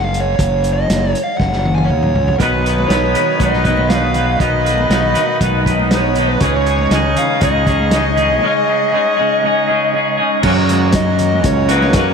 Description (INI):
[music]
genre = psychedelic rock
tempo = 119 BPM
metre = 4/4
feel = straight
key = unclear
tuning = A4 = 440 Hz
[part]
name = fuzz lead guitar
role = melody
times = 0.0-12.1 s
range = B4 to G#5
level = -18 LUFS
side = equal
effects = distortion, analog delay
[part]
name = fuzz fingered electric bass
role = bass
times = 0.0-12.1 s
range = F#1 to F#2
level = -18 LUFS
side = equal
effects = overdrive
[part]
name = vintage drum kit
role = drums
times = 0.1-12.1 s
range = crash cymbal, hi-hat, kick drum, snare drum, toms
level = -20 LUFS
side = equal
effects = none
[part]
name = combo organ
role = sustained chords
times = 2.4-12.1 s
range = C#4 to C#6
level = -25 LUFS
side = right 2 dB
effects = none
[part]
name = twangy electric guitar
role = riff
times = 2.4-12.1 s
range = F#2 to B4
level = -16 LUFS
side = equal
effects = harmonic tremolo, double-tracked left and right
[part]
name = congas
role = percussion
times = 2.8-11.9 s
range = none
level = -30 LUFS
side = left 3 dB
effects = none
[sound]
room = moderate huge ambient reverb, RT60 6.8 s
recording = dreamy mix soaked in reverb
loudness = -12 LUFS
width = side -6 dB against mid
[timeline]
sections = 0.0-10.4 A section; 10.4-12.1 B section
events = drum fill 1.4-2.4; lead electric guitar solo 10.4-12.1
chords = 0.0 F#5; 2.4 B; 6.4 C#sus2; 10.4 F#